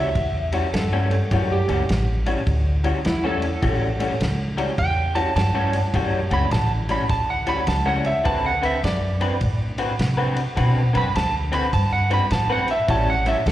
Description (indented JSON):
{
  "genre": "electric blues shuffle",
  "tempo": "104 BPM",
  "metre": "4/4",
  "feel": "swing 64% on 8ths",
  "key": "A mixolydian",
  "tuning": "A4 = 439 Hz",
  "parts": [
    { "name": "electric slide guitar", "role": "second line", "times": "0.0-13.5 s", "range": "E4 to B5", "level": "-24 LUFS", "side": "right 2 dB", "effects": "slapback echo" },
    { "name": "electric guitar through a small old amp", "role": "riff", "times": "0.0-13.4 s", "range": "A2 to B4", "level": "-25 LUFS", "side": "left 2 dB", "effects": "analog chorus, slapback echo" },
    { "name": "upright bass", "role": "bass", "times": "0.0-13.5 s", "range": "A1 to C3", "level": "-22 LUFS", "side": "equal", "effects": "none" },
    { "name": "warm soul drum kit", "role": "drums", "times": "0.2-13.5 s", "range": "kick drum, ride cymbal, snare drum", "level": "-28 LUFS", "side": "equal", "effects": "none" }
  ],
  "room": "light reverb, small room ambience",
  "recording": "live gig heard through the venue's PA, recital hall reverb",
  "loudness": "-19 LUFS",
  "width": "side -13 dB against mid",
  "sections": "0.0-13.5 A section",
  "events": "electric slide guitar solo 0.0-13.5",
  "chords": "0.0 A6; 8.3 D6; 12.9 A6"
}